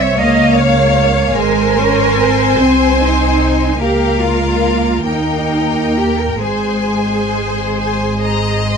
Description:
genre	classical, slow romantic movement for string orchestra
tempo	42-51 BPM (dotted quarters)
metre	6/8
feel	rubato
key	Ab major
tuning	A4 = 441 Hz
part	rich studio violin section	melody	0.0-8.8 s	C5 to C6	-20 LUFS	left 3 dB	none
part	rich studio violin section	second line	0.0-8.8 s	Bb4 to E5	-19 LUFS	left 4 dB	none
part	warm studio viola section	accompaniment	0.0-8.8 s	Ab3 to Db4	-19 LUFS	right 2 dB	none
part	rich studio cello section	bass	0.0-8.7 s	C4 to Eb5	-17 LUFS	right 2 dB	none
part	warm studio double bass section	bass	0.0-8.8 s	Ab1 to Eb2	-18 LUFS	right 2 dB	none
room	light reverb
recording	dark, warm production, nothing above 10.3 kHz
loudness	-12 LUFS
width	side -6 dB against mid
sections	0.0-8.8 A section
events	none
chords	0.2 Db; 1.4 Ab; 3.8 Bbm/Db; 5.1 Eb; 6.4 Ab

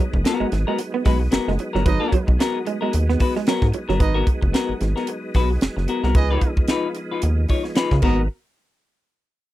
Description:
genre	funk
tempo	112 BPM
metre	4/4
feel	swing 56% on 16ths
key	G# dorian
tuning	A4 = 441 Hz
part	semi-hollow electric guitar	accompaniment	0.0-8.2 s	B3 to C#5	-24 LUFS	left 5 dB	none
part	tonewheel organ	sustained chords	0.0-8.3 s	E#3 to D#4	-31 LUFS	right 1 dB	slow rotary speaker, chorus vibrato
part	electric guitar through a small old amp	riff	0.0-4.0 s	F#3 to B3	-25 LUFS	right 7 dB	none
part	rubbery square bass	bass	0.1-8.3 s	F#1 to C#3	-21 LUFS	equal	none
part	tight funk drum kit	drums	0.1-8.2 s	crash cymbal, hi-hat, kick drum, snare drum	-20 LUFS	equal	none
part	warm horn section	second line	1.9-8.2 s	B3 to D#5	-25 LUFS	right 6 dB	none
room	little or no reverb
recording	dry, close 1970s-style studio recording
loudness	-18 LUFS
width	side -15 dB against mid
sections	0.0-8.3 A section; 8.3-9.5 B section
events	none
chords	0.0 G#m9; 6.2 C#9; 8.0 G#m9; 8.3 N.C.

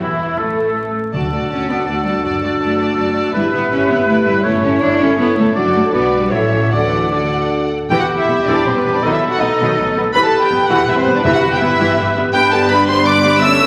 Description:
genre	quick classical-period movement for symphony orchestra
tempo	162 BPM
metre	3/4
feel	rubato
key	D major, E minor from 7.9 s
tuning	A4 = 442 Hz
part	warm studio violin section	melody	0.0-13.7 s	A3 to E6	-22 LUFS	equal	none
part	flute section	second line	0.0-13.7 s	E4 to C#6	-28 LUFS	equal	none
part	warm oboe	second line	0.0-13.7 s	E4 to D5	-23 LUFS	equal	none
part	warm studio violin section	second line	0.0-13.7 s	A3 to E5	-24 LUFS	equal	none
part	rich studio viola section	accompaniment	0.0-13.7 s	D#3 to A4	-24 LUFS	equal	none
part	mellow French horn section	sustained chords	0.0-13.7 s	E3 to A4	-23 LUFS	equal	none
part	warm studio cello section	bass	0.0-13.7 s	E2 to D4	-24 LUFS	equal	none
part	warm studio double bass section	bass	0.0-13.7 s	E1 to D2	-27 LUFS	equal	none
part	timpani	percussion	1.1-1.7, 11.2-11.8 s	G2 to D3	-28 LUFS	equal	none
room	wet scoring stage reverb, RT60 2.1 s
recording	vinyl crackle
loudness	-15 LUFS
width	mono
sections	0.0-7.9 A section; 7.9-13.7 B section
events	none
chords	0.0 A5/E; 1.1 D; 2.2 D/F#; 3.3 Em/G; 4.4 A7/G; 5.6 D/F#; 5.9 Bm; 6.3 A; 6.7 D; 7.9 Em; 9.0 B7; 10.1 Em; 11.2 Em/G; 12.3 G

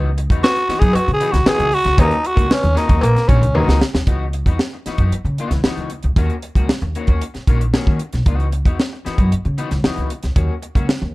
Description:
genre	funk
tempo	114 BPM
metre	4/4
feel	straight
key	C# dorian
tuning	A4 = 440 Hz
part	electric guitar at the edge of break-up	accompaniment	0.0-11.1 s	D#3 to F#4	-26 LUFS	left 4 dB	analog chorus
part	upright bass	bass	0.0-11.1 s	A#1 to D#3	-18 LUFS	equal	none
part	tight funk drum kit	drums	0.2-11.0 s	hi-hat, kick drum, snare drum	-17 LUFS	equal	none
part	growling tenor saxophone	melody	0.4-3.8 s	A#3 to G#4	-18 LUFS	equal	none
part	cowbell	percussion	0.4-3.7 s	none	-26 LUFS	left 3 dB	none
room	little or no reverb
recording	dark, warm production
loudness	-15 LUFS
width	side -21 dB against mid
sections	0.0-4.1 A section; 4.1-11.1 B section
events	tenor saxophone solo 0.0-4.1; drum fill 3.5-4.1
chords	0.0 C#m11; 2.0 D#m7; 4.1 C#m11; 6.2 D#m7; 8.3 C#m11; 10.4 D#m7

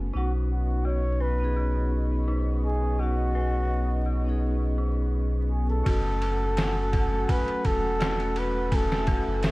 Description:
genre	trip hop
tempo	84 BPM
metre	4/4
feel	swing 54% on 16ths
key	F# dorian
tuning	A4 = 439 Hz
part	vibraphone with medium hard mallets	accompaniment	0.0-9.5 s	A3 to G#5	-33 LUFS	equal	harmonic tremolo, tape echo
part	dark analog pad	sustained chords	0.0-9.5 s	B4 to C#6	-40 LUFS	right 1 dB	chorus
part	dark detuned synth bell	arpeggios	0.0-9.5 s	D#4 to G#5	-39 LUFS	left 2 dB	chorus, digital delay
part	warm sub bass	bass	0.0-9.5 s	E1 to B1	-26 LUFS	equal	none
part	bowed-like drone	texture	0.0-9.5 s	F#3 to F#4	-42 LUFS	right 1 dB	built-in reverb, phaser
part	trumpet with bucket mute	melody	0.2-9.5 s	F#4 to C#5	-31 LUFS	equal	vintage 12-bit sampler grit, tape echo
part	trip hop sampler-style drum kit	drums	5.9-9.5 s	kick drum, ride cymbal, snare drum	-28 LUFS	equal	none
room	little or no reverb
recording	dark, warm production, vinyl crackle, low-pass filter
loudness	-23 LUFS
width	side -21 dB against mid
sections	0.0-5.9 A section; 5.9-9.5 B section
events	filter sweep on synth bell 0.0-5.9; filter sweep 0.0-5.9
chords	0.1 Badd9; 5.9 F#madd9

